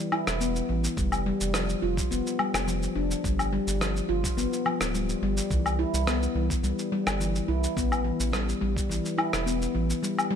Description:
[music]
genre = organic downtempo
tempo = 106 BPM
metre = 4/4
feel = straight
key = unclear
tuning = A4 = 440 Hz
[part]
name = handpan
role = arpeggios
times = 0.0-10.4 s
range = E3 to F4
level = -28 LUFS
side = left 2 dB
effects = ping-pong delay
[part]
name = electronic woodblock, rim click and shaker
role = drums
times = 0.1-10.3 s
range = none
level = -31 LUFS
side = left 1 dB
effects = none
[part]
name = round analog bass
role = bass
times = 0.3-9.9 s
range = D1 to C2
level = -30 LUFS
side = right 1 dB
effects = tube saturation
[part]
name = electronic kick drum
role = drums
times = 1.0-8.9 s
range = none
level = -30 LUFS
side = right 1 dB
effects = none
[sound]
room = light reverb, digital ambience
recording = none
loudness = -25 LUFS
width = side -8 dB against mid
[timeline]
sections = 0.0-10.4 A section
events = none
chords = 0.0 Asus2; 1.0 Fsus2; 3.2 G5; 5.5 C; 7.8 Asus2

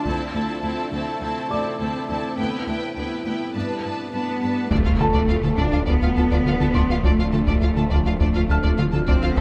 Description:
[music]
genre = cinematic, hybrid orchestral and electronic film score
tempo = 103 BPM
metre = 4/4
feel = straight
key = D dorian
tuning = A4 = 441 Hz
[part]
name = warm studio violin section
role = second line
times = 0.0-9.4 s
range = D4 to A5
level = -32 LUFS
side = equal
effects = none
[part]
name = rich chamber viola section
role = accompaniment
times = 0.0-9.4 s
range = B3 to C5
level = -34 LUFS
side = equal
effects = none
[part]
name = deep dark ambient pad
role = sustained chords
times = 0.0-9.4 s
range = F3 to B4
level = -32 LUFS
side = equal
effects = chorus, built-in reverb
[part]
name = felt-muted upright piano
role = texture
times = 0.0-9.4 s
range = A4 to F6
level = -33 LUFS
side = equal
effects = delay
[part]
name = rich symphonic cello section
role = bass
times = 0.1-9.4 s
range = D2 to D4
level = -28 LUFS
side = equal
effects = none
[part]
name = taiko ensemble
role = drums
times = 0.1-1.2, 4.7-9.4 s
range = none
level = -30 LUFS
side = equal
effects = none
[part]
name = rubbery square bass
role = riff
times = 4.7-9.4 s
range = D2 to D3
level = -24 LUFS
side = equal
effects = none
[part]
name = phased detuned saw bass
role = bass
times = 4.7-9.4 s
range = D1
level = -31 LUFS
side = equal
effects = phaser
[part]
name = rich symphonic double bass section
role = bass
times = 4.7-9.4 s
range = D2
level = -31 LUFS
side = equal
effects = none
[part]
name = impact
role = sound effects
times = 4.7-7.0 s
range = none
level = -33 LUFS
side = equal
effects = none
[sound]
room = light reverb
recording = close, detailed microphones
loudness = -22 LUFS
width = mono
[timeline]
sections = 0.0-4.7 A section; 4.7-9.4 B section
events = build-up 0.0-4.7; impact 4.7-7.0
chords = 0.1 Am/D; 2.4 Em/D; 3.5 Gadd9; 4.7 Dm

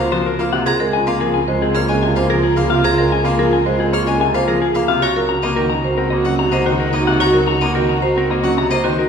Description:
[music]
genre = classical, minimalist pattern music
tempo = 110 BPM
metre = 4/4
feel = straight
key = Db major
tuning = A4 = 439 Hz
[part]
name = wooden-headed alto flute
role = second line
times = 0.0-9.1 s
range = F4 to Gb4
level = -22 LUFS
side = right 2 dB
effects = none
[part]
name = bright baby grand piano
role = accompaniment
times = 0.0-9.0 s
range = C3 to C4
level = -21 LUFS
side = equal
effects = none
[part]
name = warm symphonic string section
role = sustained chords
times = 0.0-9.1 s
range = Eb4 to Bb4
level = -27 LUFS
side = left 3 dB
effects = none
[part]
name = marimba with hard mallets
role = arpeggios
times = 0.0-9.0 s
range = C4 to C5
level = -21 LUFS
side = right 3 dB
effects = none
[part]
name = rich violin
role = arpeggios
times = 0.0-8.8 s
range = Eb5 to F6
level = -26 LUFS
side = left 4 dB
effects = none
[part]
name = warm double bass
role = bass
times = 0.0-9.1 s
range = Db2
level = -23 LUFS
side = right 2 dB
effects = none
[part]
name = clean electric guitar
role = melody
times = 0.1-9.1 s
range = Ab4 to Bb5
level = -21 LUFS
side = left 6 dB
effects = none
[sound]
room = wet recital hall reverb, RT60 1.8 s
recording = recorded in a church or concert hall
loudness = -14 LUFS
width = side -7 dB against mid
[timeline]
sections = 0.0-9.1 A section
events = none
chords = 0.0 Gbmaj7/Db; 0.7 Db6; 5.0 Ebm7/Db

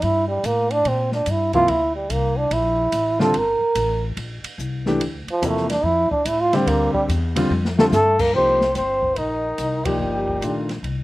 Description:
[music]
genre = modal jazz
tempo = 144 BPM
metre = 4/4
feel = swing 65% on 8ths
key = G dorian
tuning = A4 = 440 Hz
[part]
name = trombone with cup mute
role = second line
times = 0.0-10.7 s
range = Eb3 to Bb4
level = -21 LUFS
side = right 2 dB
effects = slapback echo
[part]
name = upright bass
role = bass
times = 0.0-11.0 s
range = G1 to Bb2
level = -26 LUFS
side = left 1 dB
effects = none
[part]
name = open jazz drum kit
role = drums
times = 0.0-11.0 s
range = crash cymbal, hi-hat, kick drum, ride cymbal, snare drum, toms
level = -28 LUFS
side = left 1 dB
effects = none
[part]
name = warm concert grand piano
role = accompaniment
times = 1.5-10.7 s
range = C3 to G4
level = -22 LUFS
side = left 1 dB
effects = slapback echo
[part]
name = trumpet with bucket mute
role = melody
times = 7.8-10.7 s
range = Eb4 to C5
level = -20 LUFS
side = left 1 dB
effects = none
[sound]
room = little or no reverb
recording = recorded outdoors, with no room sound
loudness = -18 LUFS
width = side -18 dB against mid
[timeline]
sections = 0.0-8.3 A section; 8.3-11.0 B section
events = trombone solo 0.0-8.3; drum fill 7.5-7.9; band accent 9.8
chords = 0.0 Gm9; 8.3 Cm7

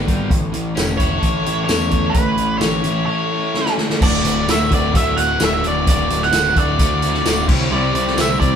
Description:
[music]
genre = classic rock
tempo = 130 BPM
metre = 4/4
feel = straight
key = unclear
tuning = A4 = 440 Hz
[part]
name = crunchy overdriven guitar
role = riff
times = 0.0-8.6 s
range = D2 to C5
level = -21 LUFS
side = left 1 dB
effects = none
[part]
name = growling picked electric bass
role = bass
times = 0.0-8.6 s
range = D1 to E2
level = -23 LUFS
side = equal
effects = overdrive
[part]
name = vintage drum kit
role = drums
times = 0.1-8.5 s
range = crash cymbal, hi-hat, kick drum, snare drum, tambourine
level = -19 LUFS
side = equal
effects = none
[part]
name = octave-fuzz lead guitar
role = melody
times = 1.0-8.6 s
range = B4 to F#5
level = -20 LUFS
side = right 1 dB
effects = distortion
[sound]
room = moderate stone room reverb, RT60 1.1 s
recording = band playing live in one room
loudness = -15 LUFS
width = side -8 dB against mid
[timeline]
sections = 0.0-4.0 A section; 4.0-8.6 B section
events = drum fill 3.6-4.0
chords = 0.3 A; 4.0 D; 7.5 C

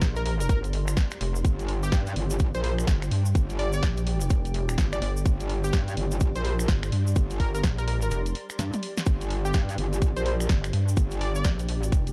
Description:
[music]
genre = bass house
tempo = 126 BPM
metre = 4/4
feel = swing 62% on 16ths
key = G minor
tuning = A4 = 440 Hz
[part]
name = pulsing pluck wobble bass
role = bass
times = 0.0-12.1 s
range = F1 to G2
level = -29 LUFS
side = equal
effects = chorus, tube saturation, sidechain pumping
[part]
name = electronic kick drum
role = drums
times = 0.0-12.0 s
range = none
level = -27 LUFS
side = equal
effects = none
[part]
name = house drum kit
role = drums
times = 0.0-12.1 s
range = finger snaps, hi-hat, snare drum, toms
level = -36 LUFS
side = equal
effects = none
[part]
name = cabasa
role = percussion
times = 0.0-12.1 s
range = none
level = -44 LUFS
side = equal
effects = none
[part]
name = granular cloud pad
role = texture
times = 0.0-12.1 s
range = G4 to C6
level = -41 LUFS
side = equal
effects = built-in reverb, sidechain pumping
[part]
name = plucky unison lead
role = melody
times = 0.2-11.5 s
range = G4 to D5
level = -37 LUFS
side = equal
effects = cassette tape, delay
[part]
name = metallic wobble bass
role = bass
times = 1.4-11.4 s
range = G1 to G2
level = -30 LUFS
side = equal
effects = chorus, tube saturation, sidechain pumping
[sound]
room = little or no reverb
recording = dark, warm production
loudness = -26 LUFS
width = mono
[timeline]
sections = 0.0-12.1 A section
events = break 8.1-9.1; drum fill 8.6-9.1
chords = 0.0 G5

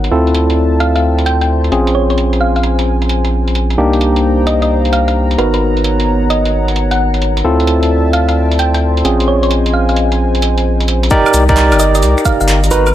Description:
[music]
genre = UK garage, two-step garage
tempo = 131 BPM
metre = 4/4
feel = swing 67% on 16ths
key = unclear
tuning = A4 = 439 Hz
[part]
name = warm analog pad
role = sustained chords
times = 0.0-12.9 s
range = Cb4 to Bb5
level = -24 LUFS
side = equal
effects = chorus, sidechain pumping
[part]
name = barky tine electric piano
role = stabs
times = 0.0-12.9 s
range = Bb3 to D5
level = -15 LUFS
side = equal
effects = medium stereo tremolo, ping-pong delay
[part]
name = saturated sub bass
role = bass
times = 0.0-12.9 s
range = G1 to D2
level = -14 LUFS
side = equal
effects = none
[part]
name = breakbeat sampler-style drum kit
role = drums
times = 0.0-12.9 s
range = cabasa, finger snaps, handclaps, hi-hat, woodblock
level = -22 LUFS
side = right 2 dB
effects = low-pass filter on hats, low-pass filter on perc, low-pass filter on snare, low-pass filter on room
[part]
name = warbly tape-like pad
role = texture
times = 0.0-11.1 s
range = C5 to C6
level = -23 LUFS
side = left 1 dB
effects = chorus, built-in reverb, sidechain pumping
[part]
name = thumb-piano-like synth pluck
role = melody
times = 0.8-12.9 s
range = Cb5 to G5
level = -19 LUFS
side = right 1 dB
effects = chorus, ping-pong delay
[part]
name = electronic kick drum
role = drums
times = 11.1-12.4 s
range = none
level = -16 LUFS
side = equal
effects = none
[sound]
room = little or no reverb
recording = none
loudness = -10 LUFS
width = side -12 dB against mid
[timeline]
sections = 0.0-11.1 A section; 11.1-12.9 B section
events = drop 11.1-12.9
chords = 0.1 Dm7; 1.7 Bbm7; 3.8 Cm7; 5.4 Abm7; 7.4 Dm7; 9.0 Bbm7; 11.1 Cm7

